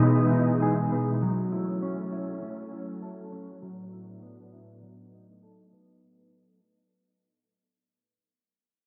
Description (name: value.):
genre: dream pop.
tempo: 100 BPM.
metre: 4/4.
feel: straight.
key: B mixolydian.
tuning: A4 = 440 Hz.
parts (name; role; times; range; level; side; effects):
soft string machine; sustained chords; 0.0-6.0 s; A2 to D#4; -29 LUFS; equal; ensemble chorus, low-pass filter.
mellow electric guitar; arpeggios; 0.0-6.6 s; F#3 to A4; -32 LUFS; equal; analog chorus, low-pass filter, digital delay.
room: moderate huge ambient reverb, RT60 4.6 s.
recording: dark, warm production.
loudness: -27 LUFS.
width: mono.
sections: 0.0-6.0 A section.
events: fade-out 0.0-6.0; filter sweep 0.0-6.0.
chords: 0.0 Emaj7/B; 1.2 A6; 3.6 D69/A; 4.8 B7.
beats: 0.02 0.62 | 1.22 1.82 2.42 3.02 | 3.62 4.22 4.82 5.42.